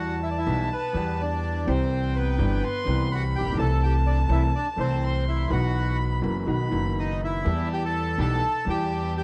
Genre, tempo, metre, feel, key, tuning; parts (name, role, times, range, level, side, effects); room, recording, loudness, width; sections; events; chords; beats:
tango; 124 BPM; 4/4; rubato; E minor; A4 = 441 Hz
bandoneon; melody; 0.0-9.2 s; B3 to A5; -32 LUFS; equal
dark violin; second line; 0.0-9.2 s; G5 to C6; -35 LUFS; equal
clear upright piano; accompaniment; 0.0-9.2 s; F#1 to A4; -32 LUFS; equal
upright bass; bass; 0.0-9.2 s; F#1 to E2; -28 LUFS; equal
warm chamber string section; stabs; 7.5-9.2 s; B3 to G4; -40 LUFS; equal
light reverb; dark, warm production; -25 LUFS; mono
0.0-9.2 A section
0.0 Em; 1.7 C; 3.6 Am/C; 5.5 Bsus4; 6.5 B; 7.5 Em
0.22 0.71 1.19 | 1.68 2.16 2.64 3.11 | 3.59 4.07 4.55 5.03 | 5.51 5.99 6.48 6.97 | 7.46 7.95 8.43 8.92